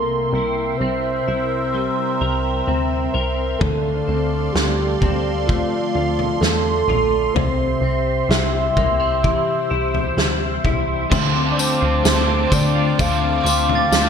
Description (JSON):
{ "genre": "dream pop", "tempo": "64 BPM", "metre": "4/4", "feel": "straight", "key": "D minor", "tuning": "A4 = 440 Hz", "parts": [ { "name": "soft octave-layered synth lead", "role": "melody", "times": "0.0-14.1 s", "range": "F4 to F5", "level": "-22 LUFS", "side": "equal", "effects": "chorus, digital delay" }, { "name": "phased analog pad", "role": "sustained chords", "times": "0.0-14.1 s", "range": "D4 to D6", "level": "-24 LUFS", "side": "right 2 dB", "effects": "phaser, chorus" }, { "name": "clean electric guitar", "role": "arpeggios", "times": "0.0-14.1 s", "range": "C3 to Bb4", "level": "-24 LUFS", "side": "left 4 dB", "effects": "ensemble chorus, digital delay" }, { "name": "plucky analog bass", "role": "bass", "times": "0.0-14.1 s", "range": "Bb1 to D3", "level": "-24 LUFS", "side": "equal", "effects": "none" }, { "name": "loose indie drum kit", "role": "drums", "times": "3.6-14.1 s", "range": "crash cymbal, kick drum, snare drum, tambourine, toms", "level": "-22 LUFS", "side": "equal", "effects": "gated reverb" }, { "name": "overdriven electric guitar", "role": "accompaniment", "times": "11.1-14.1 s", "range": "D3 to C5", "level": "-24 LUFS", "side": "right 6 dB", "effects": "harmonic tremolo, analog chorus" }, { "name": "glockenspiel with soft plastic mallets", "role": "texture", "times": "11.1-14.1 s", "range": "C6 to A6", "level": "-28 LUFS", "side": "right 4 dB", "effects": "digital delay" } ], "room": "moderate lush hall reverb, RT60 2.8 s", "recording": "bright 1980s-style digital production", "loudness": "-17 LUFS", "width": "side -7 dB against mid", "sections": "0.0-11.1 A section; 11.1-14.1 B section", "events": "none", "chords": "0.0 C7; 3.6 Dm7; 7.4 C; 11.1 Dm7", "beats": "0.80 1.74 2.67 | 3.61 4.55 5.49 6.42 | 7.36 8.30 9.24 10.18 | 11.11 12.05 12.99 13.93" }